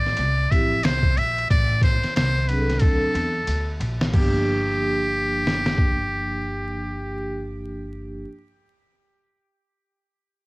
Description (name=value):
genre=hip hop, jazz-hop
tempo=91 BPM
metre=4/4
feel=swing 59% on 16ths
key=G dorian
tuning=A4 = 441 Hz
part: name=trumpet with metal mute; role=melody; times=0.0-7.5 s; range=G4 to E5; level=-25 LUFS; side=equal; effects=cassette tape
part: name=upright bass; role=bass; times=0.0-8.2 s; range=G1 to E2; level=-26 LUFS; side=equal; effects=none
part: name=trip hop sampler-style drum kit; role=drums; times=0.1-6.0 s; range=crash cymbal, hi-hat, kick drum, ride cymbal, snare drum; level=-22 LUFS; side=equal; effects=vintage 12-bit sampler grit, cassette tape
part: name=vibraphone with soft mallets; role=accompaniment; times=0.5-8.3 s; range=F3 to A4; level=-27 LUFS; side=right 1 dB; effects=cassette tape
room=little or no reverb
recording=home recording on cassette, vinyl crackle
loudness=-19 LUFS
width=side -25 dB against mid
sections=0.0-4.1 A section; 4.1-6.8 B section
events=drum fill 2.8-4.1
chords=0.0 Fmaj7; 1.5 Amadd11; 2.8 D7; 4.1 Gm7